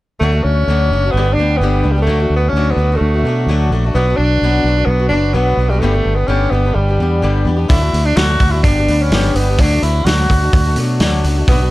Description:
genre	folk rock and heartland rock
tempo	128 BPM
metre	4/4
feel	straight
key	D major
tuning	A4 = 445 Hz
part	warm tenor saxophone	melody	0.2-11.7 s	G3 to F#4	-18 LUFS	equal	tape echo
part	picked swing-style acoustic guitar	accompaniment	0.2-11.7 s	G2 to G4	-21 LUFS	left 3 dB	none
part	fingered electric bass	bass	0.2-11.7 s	F#1 to B2	-15 LUFS	equal	none
part	loose indie drum kit	drums	7.7-11.6 s	hi-hat, kick drum, snare drum	-16 LUFS	equal	none
room	small room ambience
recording	dark, warm production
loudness	-12 LUFS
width	side -17 dB against mid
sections	0.2-11.7 A section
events	none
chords	0.2 D; 1.1 G; 2.1 D; 3.9 Bm; 5.8 G; 7.7 D; 8.6 G; 9.6 D

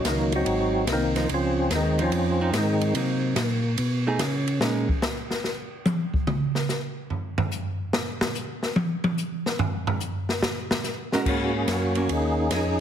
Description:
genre	soul jazz organ trio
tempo	144 BPM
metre	4/4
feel	swing 68% on 8ths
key	Ab mixolydian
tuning	A4 = 441 Hz
part	percussive tonewheel organ	melody	0.0-2.9, 11.2-12.8 s	Eb3 to Ab4	-24 LUFS	equal	slow rotary speaker, chorus vibrato
part	tonewheel organ	bass	0.0-4.9, 11.2-12.8 s	Ab1 to C#3	-26 LUFS	equal	chorus vibrato, slow rotary speaker
part	open jazz drum kit	drums	0.0-12.6 s	crash cymbal, hi-hat, kick drum, ride cymbal, snare drum, toms	-26 LUFS	equal	none
part	archtop guitar, miked and amplified	accompaniment	1.2-4.9, 11.1-12.1 s	F3 to Bb4	-29 LUFS	right 4 dB	none
room	moderate large studio reverb, RT60 1.2 s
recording	heavily compressed radio sound, multiband compression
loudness	-23 LUFS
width	side -9 dB against mid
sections	0.0-11.3 A section; 11.3-12.8 B section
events	tonewheel organ solo 0.0-11.3; drum solo 4.6-11.3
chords	0.5 Ab13; 1.3 Dbmaj9; 2.9 Cm7b5; 3.8 B13; 4.6 Bbm7; 6.3 N.C.; 10.4 Ab9sus4

